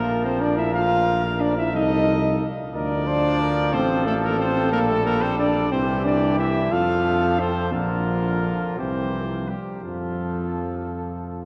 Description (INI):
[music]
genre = classical, brass quintet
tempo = 59 BPM (dotted quarters)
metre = 6/8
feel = uneven beats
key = F major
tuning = A4 = 440 Hz
[part]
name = mellow trumpet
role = melody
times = 0.0-11.5 s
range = G4 to C5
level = -32 LUFS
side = equal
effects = none
[part]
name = clear trumpet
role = second line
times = 0.0-10.9 s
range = F4 to F5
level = -31 LUFS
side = equal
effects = none
[part]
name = brilliant trombone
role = accompaniment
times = 0.0-11.5 s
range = D3 to G3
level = -33 LUFS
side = equal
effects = none
[part]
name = mellow French horn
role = accompaniment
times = 0.0-10.9 s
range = F3 to F4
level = -26 LUFS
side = equal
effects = none
[part]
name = dark tuba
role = bass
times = 0.0-11.5 s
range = A1 to F2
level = -28 LUFS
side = equal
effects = none
[sound]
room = wet cathedral reverb, RT60 6.5 s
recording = none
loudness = -22 LUFS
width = mono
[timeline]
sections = 0.0-11.5 A section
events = none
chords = 0.0 Bb5; 1.7 F7/C; 2.7 Bb/D; 3.7 F/A; 4.7 Gm/Bb; 5.7 C; 6.7 F; 7.7 Bb; 8.8 C; 9.8 F